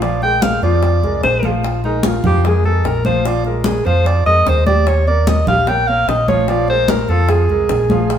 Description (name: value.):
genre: Afro-Cuban jazz.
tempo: 148 BPM.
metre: 4/4.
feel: straight.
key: Bb mixolydian.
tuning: A4 = 440 Hz.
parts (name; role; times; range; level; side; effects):
warm alto saxophone; melody; 0.0-8.2 s; Eb4 to G5; -17 LUFS; right 1 dB; none.
warm upright piano; accompaniment; 0.0-8.2 s; F3 to G5; -21 LUFS; equal; none.
fingered electric bass; bass; 0.0-8.2 s; Bb1 to F2; -17 LUFS; equal; none.
bongos; percussion; 0.0-8.2 s; none; -27 LUFS; left 4 dB; none.
congas; percussion; 0.0-8.2 s; none; -22 LUFS; left 2 dB; none.
room: wet stone room reverb, RT60 1.3 s.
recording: band playing live in one room.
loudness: -12 LUFS.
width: side -9 dB against mid.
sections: 0.0-8.2 A section.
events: alto saxophone solo 0.0-8.2.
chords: 0.0 Bb7; 4.9 Eb7; 6.5 Bb7(no3).